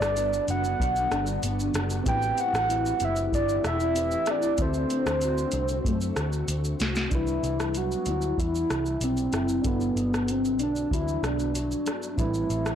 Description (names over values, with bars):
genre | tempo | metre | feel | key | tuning
indie pop, bedroom pop | 95 BPM | 4/4 | straight | C lydian | A4 = 440 Hz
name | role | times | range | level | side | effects
soft octave-layered synth lead | melody | 0.0-12.8 s | B3 to G5 | -27 LUFS | right 1 dB | wide subtle chorus, tape echo
nylon-string guitar | accompaniment | 0.0-12.8 s | G2 to F#4 | -32 LUFS | left 4 dB | ensemble chorus, vibrato effect
reed electric piano | accompaniment | 0.0-12.8 s | G3 to B4 | -38 LUFS | right 2 dB | fast tremolo, cassette tape
shimmering ambient pad | sustained chords | 0.0-7.1 s | D3 to G4 | -38 LUFS | right 1 dB | chorus, built-in reverb
vintage muted picked electric bass | bass | 0.0-12.8 s | E1 to F#2 | -30 LUFS | equal | transformer saturation
soft vintage rhythm box | drums | 0.0-12.8 s | hi-hat, kick drum, rim click, shaker, snare drum | -31 LUFS | equal | none
room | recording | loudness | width
moderate spring reverb, RT60 1.5 s | blown-out, overdriven recording, overdrive | -24 LUFS | side -9 dB against mid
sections
0.0-7.1 A section; 7.1-12.8 B section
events
drum fill 6.5-7.1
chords
0.0 Gmaj7; 2.1 Am7; 4.6 D7; 7.1 Cmaj7; 9.6 Gmaj7; 12.2 Am7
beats
0.17 0.80 1.43 | 2.06 2.69 3.33 3.96 | 4.59 5.22 5.85 6.48 | 7.12 7.75 8.38 9.01 | 9.64 10.28 10.91 11.54 | 12.18